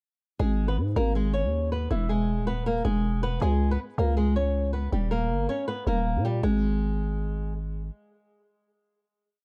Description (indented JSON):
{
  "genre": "hip hop, trap",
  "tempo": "159 BPM",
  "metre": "4/4",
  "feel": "half-time",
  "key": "G# harmonic minor",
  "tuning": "A4 = 440 Hz",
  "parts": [
    { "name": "flamenco guitar", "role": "melody", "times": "0.4-7.5 s", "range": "E3 to C#5", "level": "-30 LUFS", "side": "equal", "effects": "none" },
    { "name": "growling 808-style bass", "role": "bass", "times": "0.4-7.9 s", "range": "D#1 to A#2", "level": "-28 LUFS", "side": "equal", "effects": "none" }
  ],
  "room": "light reverb, studio reverb",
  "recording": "dark, warm production",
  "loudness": "-27 LUFS",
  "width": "mono",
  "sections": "0.4-6.4 hook; 6.4-9.4 final note",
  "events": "none",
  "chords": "0.4 G#m; 1.9 E; 3.4 C#5; 4.9 D#; 6.4 N.C."
}